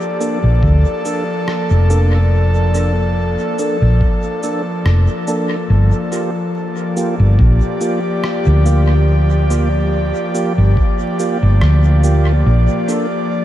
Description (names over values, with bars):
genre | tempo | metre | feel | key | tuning
ambient dub | 71 BPM | 4/4 | swing 55% on 16ths | G minor | A4 = 440 Hz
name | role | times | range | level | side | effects
airy breathy pad | sustained chords | 0.0-13.4 s | F3 to D5 | -19 LUFS | left 1 dB | chorus
mellow tonewheel organ | stabs | 0.2-13.1 s | Bb3 to A4 | -23 LUFS | right 3 dB | overdrive, chorus vibrato, slow rotary speaker, dub echo
electronic cabasa and rim click | drums | 0.2-13.1 s | none | -31 LUFS | right 1 dB | overdrive, studio reverb, dub echo
hollow-body short-scale fingered electric bass | bass | 0.4-12.7 s | F1 to D2 | -12 LUFS | equal | tube saturation
electronic kick drum | drums | 0.6-11.0 s | none | -16 LUFS | equal | overdrive, studio reverb
room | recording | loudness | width
light reverb | vinyl crackle | -13 LUFS | side -13 dB against mid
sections
0.0-5.7 A section; 5.7-13.4 B section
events
none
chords
0.0 Bbmaj7; 5.7 Gm7; 12.5 Bbmaj7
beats
0.63 1.47 | 2.32 3.16 4.01 4.86 | 5.70 6.54 7.39 8.23 | 9.08 9.93 10.77 11.62 | 12.46 13.30